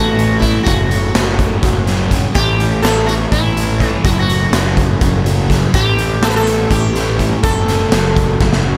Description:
psychedelic rock; 248 BPM (eighths); 7/8; straight; A mixolydian; A4 = 440 Hz
sitar; melody; 0.0-8.6 s; E4 to B4; -21 LUFS; equal; analog delay
string machine, cellos; sustained chords; 0.0-8.8 s; A4 to C#6; -31 LUFS; equal
fuzz guitar; riff; 0.0-8.8 s; F#2 to A3; -22 LUFS; equal; distortion, phaser
fuzz picked electric bass; bass; 0.0-8.8 s; F#1 to A1; -20 LUFS; equal; overdrive
raw garage drum kit; drums; 0.2-8.6 s; hi-hat, kick drum, snare drum; -19 LUFS; equal
light reverb; -14 LUFS; mono
0.0-8.8 A section
drum fill 8.4-8.8
0.0 A; 0.7 F#m; 2.4 A; 4.0 F#m; 5.7 A; 7.4 F#m
0.18 0.42 | 0.66 0.91 1.15 1.39 1.63 1.87 2.11 | 2.35 2.59 2.83 3.08 3.32 3.56 3.80 | 4.04 4.29 4.53 4.77 5.01 5.25 5.50 | 5.74 5.98 6.22 6.46 6.71 6.95 7.19 | 7.44 7.68 7.92 8.16 8.41 8.65

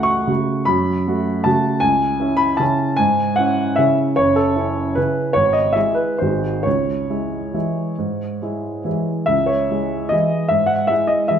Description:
classical, piano waltz; 126-162 BPM; 3/4; rubato; C# minor; A4 = 440 Hz
warm baby grand piano; solo; 0.0-11.4 s; F#1 to C#6; -16 LUFS; equal
wet recital hall reverb, RT60 1.4 s; -16 LUFS; side -8 dB against mid
0.0-9.3 A section; 9.3-11.4 A section
0.0 F#m/C#; 1.8 C#m; 4.2 F#m7; 5.4 C#m9/G#; 6.2 G#7; 6.7 C#m
0.29 | 0.69 1.07 1.46 | 1.83 2.21 2.61 | 3.00 3.38 3.77 | 4.17 4.56 4.97 | 5.36 5.75 6.20 | 6.66 7.10 7.55 | 7.99 8.42 8.86 | 9.30 9.72 10.13 | 10.53 10.91 11.31

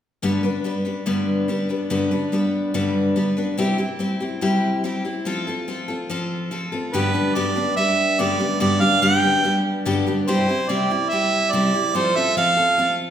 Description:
country; 144 BPM; 4/4; straight; G mixolydian; A4 = 438 Hz
picked steel-string acoustic guitar; accompaniment; 0.2-13.1 s; G2 to B4; -20 LUFS; left 1 dB
mellow harmonica; melody; 6.9-13.0 s; B4 to G5; -19 LUFS; right 3 dB
wet recital hall reverb, RT60 1.6 s; recorded in a church or concert hall; -18 LUFS; side -9 dB against mid
0.2-6.9 A section; 6.9-13.1 B section
0.2 G; 3.6 C; 5.3 F; 6.9 G; 10.3 C; 11.9 F
| 0.23 0.65 1.07 1.49 | 1.91 2.33 2.74 3.16 | 3.58 4.00 4.42 4.84 | 5.26 5.67 6.09 6.51 | 6.93 7.35 7.77 8.18 | 8.60 9.02 9.44 9.85 | 10.27 10.69 11.11 11.53 | 11.94 12.36 12.78

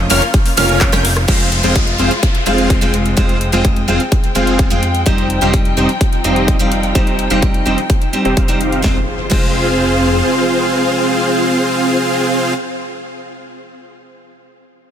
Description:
EDM, festival progressive house; 127 BPM; 4/4; straight; F minor; A4 = 440 Hz
picked steel-string acoustic guitar; accompaniment; 0.0-12.6 s; F3 to F5; -20 LUFS; right 1 dB; sidechain pumping, tape echo
warm symphonic string section; sustained chords; 0.0-12.1 s; F3 to G5; -22 LUFS; left 2 dB; sidechain pumping, low-pass filter
fat analog bass; bass; 0.0-10.2 s; F1 to F2; -20 LUFS; equal; sidechain pumping
wide unison pluck; arpeggios; 0.1-1.1 s; F6 to G6; -20 LUFS; right 2 dB; phaser, sidechain pumping, tape echo
dense compressed supersaw; riff; 0.1-12.5 s; C4 to G5; -17 LUFS; equal; sidechain pumping, low-pass filter, tape echo
big-room dance drum kit; drums; 0.1-9.5 s; crash cymbal, handclaps, hi-hat, ride cymbal, rim click, snare drum; -23 LUFS; left 2 dB
electronic kick drum; drums; 0.3-9.5 s; -14 LUFS; equal
downlifter and impact; sound effects; 1.3-5.1, 8.9-12.1 s; -25 LUFS; equal
light reverb; -12 LUFS; side -9 dB against mid
0.0-1.3 A section; 1.3-8.8 B section; 8.8-12.6 C section
drop 0.0-1.3; band accent 0.8; filter sweep on analog synth bass 1.3-8.8
0.0 Bbm/F; 1.3 Fm; 5.1 Cm/F; 8.8 Fm
0.34 0.81 | 1.28 1.76 2.23 2.70 | 3.17 3.65 4.12 4.59 | 5.06 5.54 6.01 6.48 | 6.95 7.42 7.90 8.37 | 8.84 9.31 9.79 10.26 | 10.73 11.21 11.68 12.15

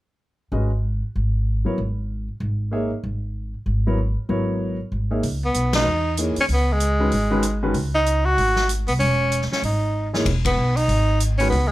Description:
modal jazz; 191 BPM; 4/4; swing 61% on 8ths; C# dorian; A4 = 439 Hz
warm grand piano; accompaniment; 0.5-7.7, 10.1-11.5 s; D#3 to E5; -24 LUFS; left 1 dB
upright bass; bass; 0.5-11.7 s; E1 to E2; -22 LUFS; equal
swinging big-band drum kit; drums; 5.2-11.6 s; hi-hat, kick drum, ride cymbal, snare drum; -29 LUFS; left 1 dB
breathy tenor saxophone; melody; 5.4-11.7 s; G#3 to F#4; -21 LUFS; equal; plate reverb
light reverb; -19 LUFS; side -16 dB against mid
0.2-5.2 A section; 5.2-11.7 B section
band accent 5.7, 10.4; drum fill 9.9-10.3
0.2 C#m11; 5.2 C#m9
| 0.21 0.52 0.83 1.15 | 1.46 1.78 2.09 2.40 | 2.72 3.03 3.35 3.66 | 3.98 4.29 4.61 4.92 | 5.23 5.55 5.86 6.18 | 6.49 6.80 7.12 7.43 | 7.75 8.06 8.38 8.69 | 9.01 9.32 9.63 9.95 | 10.26 10.58 10.89 11.21 | 11.52

